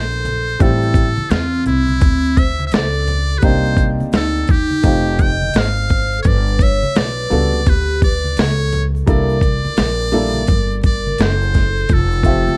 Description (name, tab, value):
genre	hip hop, jazz-hop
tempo	85 BPM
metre	4/4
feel	swing 63% on 16ths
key	unclear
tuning	A4 = 440 Hz
part	trumpet with metal mute	melody	0.0-12.6 s	E4 to G5	-25 LUFS	equal	none
part	vibraphone with soft mallets	second line	0.0-12.6 s	C4 to Eb5	-25 LUFS	equal	none
part	upright bass	bass	0.0-12.5 s	F1 to E2	-21 LUFS	equal	none
part	egg shaker and congas	percussion	0.1-12.6 s	none	-32 LUFS	equal	none
part	dusty soul sampler-style drum kit	drums	0.3-12.5 s	hi-hat, kick drum, snare drum	-18 LUFS	equal	overdrive
part	clear upright piano	accompaniment	0.6-12.6 s	F3 to E5	-22 LUFS	equal	none
room	light reverb, studio reverb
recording	dark, warm production, vinyl crackle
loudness	-16 LUFS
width	mono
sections	0.6-12.6 A section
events	break 0.0-0.6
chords	0.0 D7(no3) (rootless); 0.6 Am7; 3.4 Cm7; 4.8 F9; 6.2 G; 9.1 C13; 11.9 Fmaj7